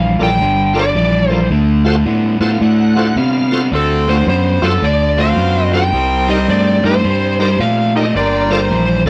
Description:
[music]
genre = electric blues shuffle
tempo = 108 BPM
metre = 4/4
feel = swing 63% on 8ths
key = unclear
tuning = A4 = 437 Hz
[part]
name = overdriven slide guitar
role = melody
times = 0.0-9.1 s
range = A4 to G5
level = -19 LUFS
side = equal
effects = none
[part]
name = overdriven electric guitar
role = riff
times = 0.0-9.1 s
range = G2 to B3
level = -20 LUFS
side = equal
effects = none
[part]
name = fingered electric bass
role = bass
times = 0.0-9.1 s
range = G1 to C3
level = -18 LUFS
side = equal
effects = none
[part]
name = bright tonewheel organ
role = accompaniment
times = 0.2-9.1 s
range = Eb4 to A5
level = -22 LUFS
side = equal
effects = slow rotary speaker, overdrive, chorus vibrato
[part]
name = bright horn section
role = stabs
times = 3.7-8.9 s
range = Bb3 to C5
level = -23 LUFS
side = equal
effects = none
[sound]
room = moderate small room reverb, RT60 0.5 s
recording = rough rehearsal-room recording, tube saturation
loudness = -14 LUFS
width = mono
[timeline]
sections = 0.0-9.1 A section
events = tonewheel organ fill 2.1-3.7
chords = 0.0 Gm7; 1.5 D7#9; 5.9 Cm7; 8.2 Gm7

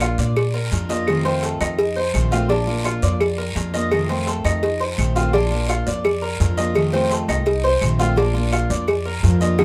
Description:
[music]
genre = latin, Cuban son and guajira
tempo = 169 BPM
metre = 4/4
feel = straight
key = Bb major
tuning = A4 = 440 Hz
[part]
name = picked steel-string acoustic guitar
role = accompaniment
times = 0.0-9.6 s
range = C3 to F4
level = -27 LUFS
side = equal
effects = none
[part]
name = Cuban tres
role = arpeggios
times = 0.0-9.6 s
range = D4 to Eb5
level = -26 LUFS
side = equal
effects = none
[part]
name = upright bass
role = bass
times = 0.0-9.6 s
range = Bb1 to Bb2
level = -24 LUFS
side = equal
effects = none
[part]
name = claves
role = percussion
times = 0.0-9.6 s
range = none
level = -34 LUFS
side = equal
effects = none
[part]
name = cowbell and bongos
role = percussion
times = 0.0-9.6 s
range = none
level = -26 LUFS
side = equal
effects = none
[part]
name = guiro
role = percussion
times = 0.0-9.6 s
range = none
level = -35 LUFS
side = equal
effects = none
[sound]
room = moderate small room reverb, RT60 0.5 s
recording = none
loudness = -20 LUFS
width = mono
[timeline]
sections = 0.0-9.6 A section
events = none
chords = 0.0 Bb; 1.1 F7; 2.5 Bb; 3.9 F7; 5.3 Bb; 6.8 F7; 8.2 Bb

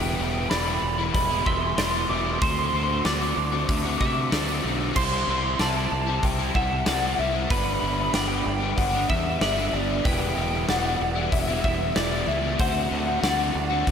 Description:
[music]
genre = post-rock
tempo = 94 BPM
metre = 4/4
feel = straight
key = unclear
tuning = A4 = 440 Hz
[part]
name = electric guitar through a small old amp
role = melody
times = 0.0-13.9 s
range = D5 to D6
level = -27 LUFS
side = left 1 dB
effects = wide subtle chorus, diffuse ambient delay
[part]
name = twelve-string electric guitar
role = arpeggios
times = 0.0-13.9 s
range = B4 to E5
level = -33 LUFS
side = right 3 dB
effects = analog chorus, diffuse ambient delay
[part]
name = crunchy overdriven guitar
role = riff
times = 0.0-13.9 s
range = G2 to F#4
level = -30 LUFS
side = left 10 dB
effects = ensemble chorus
[part]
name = raw garage guitar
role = riff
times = 0.0-13.9 s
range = G2 to F#4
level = -32 LUFS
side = right 11 dB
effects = overdrive, lush chorus
[part]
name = growling fingered electric bass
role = bass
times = 0.0-13.9 s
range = E1 to C3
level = -29 LUFS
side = equal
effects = overdrive
[part]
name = huge arena drum kit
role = drums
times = 0.5-13.9 s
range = crash cymbal, hi-hat, kick drum, snare drum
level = -28 LUFS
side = equal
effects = none
[sound]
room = moderate huge ambient reverb, RT60 4.8 s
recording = dreamy mix soaked in reverb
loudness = -22 LUFS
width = side -7 dB against mid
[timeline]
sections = 0.0-13.9 A section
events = none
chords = 0.0 Em7; 2.4 D7; 5.0 C6; 7.5 G; 10.1 Em7; 12.6 D7

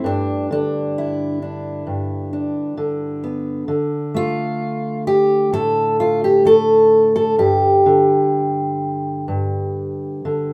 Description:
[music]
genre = folk, solo fingerstyle acoustic guitar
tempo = 65 BPM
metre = 4/4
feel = rubato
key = unclear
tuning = A4 = 440 Hz
[part]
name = fingerpicked steel-string acoustic guitar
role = solo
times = 0.0-10.5 s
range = G2 to A4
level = -18 LUFS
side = equal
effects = none
[sound]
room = moderate studio reverb, RT60 0.6 s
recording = none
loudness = -18 LUFS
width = mono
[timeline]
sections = 0.0-10.5 A section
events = none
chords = 0.0 G5; 3.7 Dm; 7.4 G5

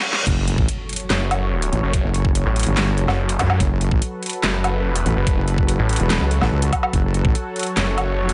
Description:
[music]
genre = heavy wobble dubstep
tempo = 144 BPM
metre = 4/4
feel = half-time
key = F# minor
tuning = A4 = 440 Hz
[part]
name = reverse cymbal, impact and zap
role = sound effects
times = 0.0-3.5 s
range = none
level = -30 LUFS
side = equal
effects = none
[part]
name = dubstep drum kit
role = drums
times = 0.1-8.3 s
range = crash cymbal, handclaps, hi-hat, snare drum, woodblock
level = -26 LUFS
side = equal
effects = none
[part]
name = lush unison pad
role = sustained chords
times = 0.8-8.3 s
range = F#3 to C#5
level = -30 LUFS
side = equal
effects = chorus, sidechain pumping
[part]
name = wobble bass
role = bass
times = 0.3-7.3 s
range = E1 to C#2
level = -22 LUFS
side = equal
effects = chorus, overdrive
[part]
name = electronic kick drum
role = drums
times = 0.3-7.3 s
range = none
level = -23 LUFS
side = equal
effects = none
[part]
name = snarling distorted saw bass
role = bass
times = 1.1-8.3 s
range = F#1 to F#2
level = -23 LUFS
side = equal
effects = distortion, overdrive
[sound]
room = little or no reverb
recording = high-pass filter, nothing above 10.5 kHz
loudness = -20 LUFS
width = mono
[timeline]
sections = 0.3-8.3 A section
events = break 0.0; drum fill 0.0; reverse cymbal 0.0; drop 0.3-8.3; impact 0.3-1.9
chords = 0.3 F#m

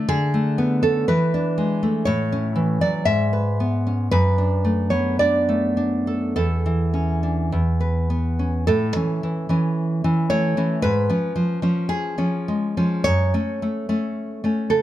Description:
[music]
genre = romantic piece for solo classical guitar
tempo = 49-62 BPM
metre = 2/4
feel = rubato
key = A major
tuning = A4 = 439 Hz
[part]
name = nylon-string guitar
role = solo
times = 0.0-14.8 s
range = E2 to E5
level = -19 LUFS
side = equal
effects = none
[sound]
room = light reverb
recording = close, detailed microphones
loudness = -19 LUFS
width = side -13 dB against mid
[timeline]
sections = 0.0-8.7 A section; 8.7-14.8 B section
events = none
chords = 0.1 Bm7/D; 1.1 E7; 2.1 A; 3.1 E/G#; 4.1 D/F#; 6.4 A/E; 7.5 E5; 8.7 A; 10.8 C#7/G#; 13.1 F#m

